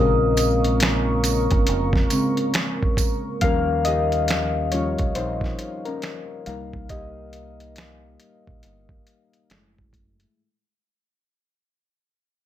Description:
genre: lo-fi hip hop.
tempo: 69 BPM.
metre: 4/4.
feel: swing 61% on 16ths.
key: unclear.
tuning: A4 = 441 Hz.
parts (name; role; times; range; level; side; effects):
muted felt-like synth keys; accompaniment; 0.0-10.4 s; Db3 to F5; -23 LUFS; left 3 dB; chorus, cassette tape, low-pass filter.
deep dark ambient pad; sustained chords; 0.0-3.4 s; Bb4 to Db6; -29 LUFS; right 5 dB; chorus, built-in reverb, low-pass filter.
deep dub fingered electric bass; bass; 0.0-10.2 s; F1 to Eb2; -26 LUFS; right 1 dB; none.
dusty soul sampler-style drum kit; drums; 0.4-10.4 s; finger snaps, hi-hat, kick drum, snare drum; -24 LUFS; right 1 dB; none.
tambourine; percussion; 0.4-3.2 s; none; -31 LUFS; right 17 dB; none.
room: light reverb.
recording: none.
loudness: -19 LUFS.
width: side -11 dB against mid.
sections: 0.0-10.4 A section.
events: fade-out 0.0-10.4; synth keys solo 0.0-10.4.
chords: 0.0 Bbm7; 3.4 Eb7; 6.5 Cm7; 9.5 Gbm7.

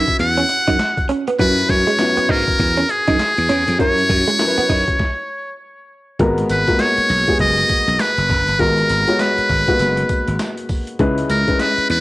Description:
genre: R&B, new jack swing.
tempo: 100 BPM.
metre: 4/4.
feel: swing 61% on 16ths.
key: G# minor.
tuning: A4 = 440 Hz.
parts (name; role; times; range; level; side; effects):
trumpet with metal mute; melody; 0.0-12.0 s; G#4 to F#5; -17 LUFS; equal; none.
dark baby grand piano; accompaniment; 0.0-12.0 s; F#3 to C#5; -21 LUFS; left 2 dB; none.
direct-recorded clean electric guitar; riff; 0.0-4.8 s; F#3 to D#4; -22 LUFS; right 4 dB; lush chorus.
slap bass; bass; 0.0-12.0 s; F#1 to G#2; -20 LUFS; equal; none.
boom bap sampler-style drum kit; drums; 0.1-12.0 s; handclaps, hi-hat, kick drum, snare drum, tambourine; -23 LUFS; equal; overdrive.
room: light reverb.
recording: home recording on cassette.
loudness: -14 LUFS.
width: side -18 dB against mid.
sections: 0.0-6.2 A section; 6.2-12.0 B section.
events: stop 5.0-6.2.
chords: 0.0 F#7sus4; 6.2 G#m9; 11.0 C#m7.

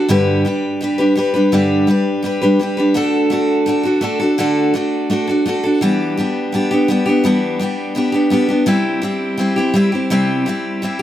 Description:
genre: country.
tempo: 168 BPM.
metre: 4/4.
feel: straight.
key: G major.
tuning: A4 = 442 Hz.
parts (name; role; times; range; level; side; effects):
picked steel-string acoustic guitar; solo; 0.0-11.0 s; G2 to B4; -14 LUFS; equal; none.
room: moderate plate reverb, RT60 3.0 s.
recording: none.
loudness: -14 LUFS.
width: side -12 dB against mid.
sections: 0.1-11.0 A section.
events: none.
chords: 0.1 G; 3.0 D; 5.8 Em7; 8.7 C.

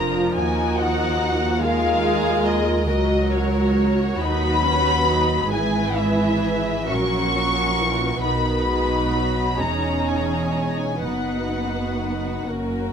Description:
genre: classical, slow romantic movement for string orchestra.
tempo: 41-49 BPM (dotted quarters).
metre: 6/8.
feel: rubato.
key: unclear.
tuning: A4 = 440 Hz.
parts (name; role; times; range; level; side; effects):
dark studio violin section; melody; 0.0-12.5 s; C#5 to C#6; -24 LUFS; left 3 dB; none.
warm symphonic violin section; second line; 0.0-12.9 s; E#4 to C#5; -27 LUFS; equal; none.
dark symphonic viola section; accompaniment; 0.0-12.9 s; D#3 to F#4; -24 LUFS; equal; none.
dark symphonic double bass section; bass; 0.0-12.9 s; E1 to D#2; -26 LUFS; right 2 dB; none.
warm symphonic cello section; bass; 0.0-12.9 s; C#2 to B2; -27 LUFS; right 2 dB; none.
room: moderate recital hall reverb, RT60 1.8 s.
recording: close, detailed microphones.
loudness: -19 LUFS.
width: side -7 dB against mid.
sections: 0.0-12.9 A section.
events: none.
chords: 0.4 D#m; 2.9 F#/C#; 4.2 B/D#; 5.5 E/G#; 6.9 F#7/A#; 8.2 B; 9.6 C#m/E; 11.0 F#sus4.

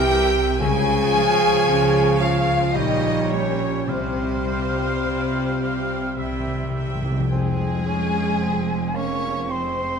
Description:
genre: classical, slow romantic movement for symphony orchestra.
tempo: 52-58 BPM.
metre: 3/4.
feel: rubato.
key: F minor.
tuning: A4 = 440 Hz.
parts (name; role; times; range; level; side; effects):
rich chamber violin section; melody; 0.0-10.0 s; Ab4 to Ab5; -30 LUFS; left 1 dB; none.
concert flute; second line; 0.0-10.0 s; C5 to Db6; -28 LUFS; left 2 dB; none.
rich chamber violin section; second line; 0.0-10.0 s; Ab4 to Ab5; -32 LUFS; right 1 dB; none.
warm oboe; second line; 0.0-7.0 s; Bb4 to F5; -32 LUFS; right 1 dB; none.
rich studio viola section; accompaniment; 0.0-10.0 s; Ab3 to G5; -31 LUFS; right 3 dB; none.
warm bassoon; accompaniment; 0.0-10.0 s; E3 to Db4; -30 LUFS; right 2 dB; none.
dark French horn section; sustained chords; 0.0-10.0 s; Ab3 to Ab4; -24 LUFS; left 1 dB; none.
concert harp; arpeggios; 0.0-10.0 s; F2 to C6; -29 LUFS; left 6 dB; none.
bright symphonic cello section; bass; 0.0-10.0 s; F2 to Db3; -29 LUFS; right 4 dB; none.
clear chamber double bass section; bass; 0.0-10.0 s; F1 to Db2; -28 LUFS; right 4 dB; none.
timpani; percussion; 3.9-7.3 s; C3; -27 LUFS; left 2 dB; none.
room: moderate scoring stage reverb, RT60 2.1 s.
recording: none.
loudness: -19 LUFS.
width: side -6 dB against mid.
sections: 0.0-7.3 A section; 7.3-10.0 B section.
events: timpani fill 6.2-7.3.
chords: 0.0 C7; 0.6 Db; 2.7 Gdim/Bb; 3.9 Csus4; 6.2 C; 7.3 Fm.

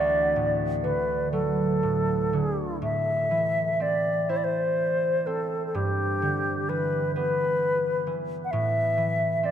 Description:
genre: celtic folk, Celtic slow air.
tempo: 40-44 BPM (dotted quarters).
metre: 6/8.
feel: rubato.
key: A dorian.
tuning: A4 = 440 Hz.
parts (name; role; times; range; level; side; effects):
wooden flute; melody; 0.0-9.5 s; G4 to F#5; -25 LUFS; equal; none.
concert harp; accompaniment; 0.0-9.5 s; D2 to E4; -28 LUFS; right 2 dB; none.
room: wet cathedral reverb, RT60 5.9 s.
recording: minimal, uncompressed stereo recording.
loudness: -23 LUFS.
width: side -9 dB against mid.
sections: 0.0-2.8 A section; 2.8-9.5 B section.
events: none.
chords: 0.0 D; 2.8 Am; 5.7 G6; 8.5 A5.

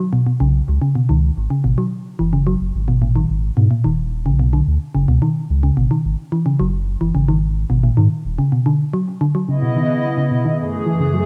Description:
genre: IDM.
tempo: 109 BPM.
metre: 4/4.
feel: straight.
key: C# minor.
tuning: A4 = 441 Hz.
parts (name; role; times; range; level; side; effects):
thumb-piano-like synth pluck; arpeggios; 0.0-11.2 s; A#2 to F#3; -20 LUFS; equal; chorus, dub echo.
warm sub bass; bass; 0.4-8.4 s; D#1 to G#2; -20 LUFS; equal; none.
hollow soft pad; sustained chords; 9.5-11.3 s; F#2 to D#5; -22 LUFS; equal; chorus, vintage 12-bit sampler grit.
room: light reverb.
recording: rough home demo mix.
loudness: -18 LUFS.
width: mono.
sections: 0.0-9.5 A section; 9.5-11.3 B section.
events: filter sweep on synth arpeggio sound 9.5-11.3.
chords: 0.0 Bsus2; 0.7 C#5; 1.8 F#sus2; 2.9 G#madd9; 4.0 Bmadd9; 5.1 C#sus2; 6.2 F#sus2; 7.3 G#5; 8.4 Bmadd9; 9.5 C#m9; 10.6 F#m9.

